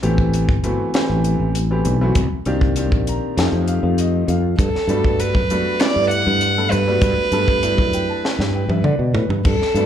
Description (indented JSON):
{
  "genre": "electric jazz fusion",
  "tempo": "99 BPM",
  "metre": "4/4",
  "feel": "straight",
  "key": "G major",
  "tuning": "A4 = 441 Hz",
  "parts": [
    { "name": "clear baby grand piano", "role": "accompaniment", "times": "0.0-9.9 s", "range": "Eb3 to Bb5", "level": "-23 LUFS", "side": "left 2 dB", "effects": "slapback echo" },
    { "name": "sustaining fretless electric bass", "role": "bass", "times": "0.0-9.9 s", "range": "G1 to D3", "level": "-19 LUFS", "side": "equal", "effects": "none" },
    { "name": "tight funk drum kit", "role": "drums", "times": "0.0-9.9 s", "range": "crash cymbal, hi-hat, kick drum, snare drum, toms", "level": "-20 LUFS", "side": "equal", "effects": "none" },
    { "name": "rich violin", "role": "melody", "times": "4.6-9.9 s", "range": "A4 to F#5", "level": "-20 LUFS", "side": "right 2 dB", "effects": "slapback echo" }
  ],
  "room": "little or no reverb",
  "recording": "live gig heard through the venue's PA, club reverb",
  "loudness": "-16 LUFS",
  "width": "side -9 dB against mid",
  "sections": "0.0-9.5 A section",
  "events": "grand piano fill 2.8-4.6, 7.6-9.5; drum fill 8.2-9.5",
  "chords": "0.0 Am9; 2.2 Cm7; 3.4 F9; 4.6 Gmaj9"
}